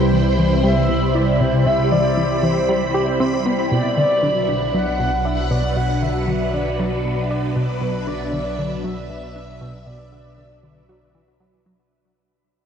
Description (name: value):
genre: ambient, sequencer-driven space music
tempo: 117 BPM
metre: 4/4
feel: straight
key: unclear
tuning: A4 = 441 Hz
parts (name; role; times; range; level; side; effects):
- mellow horn-like synth lead; melody; 0.0-11.4 s; B4 to F#5; -23 LUFS; equal; lush chorus, shimmer reverb, ping-pong delay
- phased string machine; sustained chords; 0.0-11.9 s; B2 to G5; -22 LUFS; equal; ensemble chorus, phaser, shimmer reverb
- analog drone; bass; 0.0-11.9 s; B1 to C2; -24 LUFS; equal; chorus
- bubbling stepped-filter texture; texture; 0.0-11.9 s; B5; -32 LUFS; right 3 dB; chorus, built-in reverb, shimmer reverb
- tight sequenced synth; riff; 0.1-11.7 s; B2 to G4; -23 LUFS; equal; chorus, cassette tape, shimmer reverb, ping-pong delay
room: wet huge ambient reverb, RT60 8.1 s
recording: worn, warbling old tape, cassette tape, warbly pitch drift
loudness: -17 LUFS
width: side -8 dB against mid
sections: 0.0-11.9 A section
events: filter sweep on synth arpeggio sound 0.0-11.9; fade-out 3.7-11.9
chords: 0.0 C; 3.7 Bm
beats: 0.12 0.64 1.15 | 1.66 2.17 2.69 3.20 | 3.71 4.23 4.74 5.25 | 5.76 6.28 6.79 7.30 | 7.82 8.33 8.84 9.35 | 9.87 10.38 10.89 11.41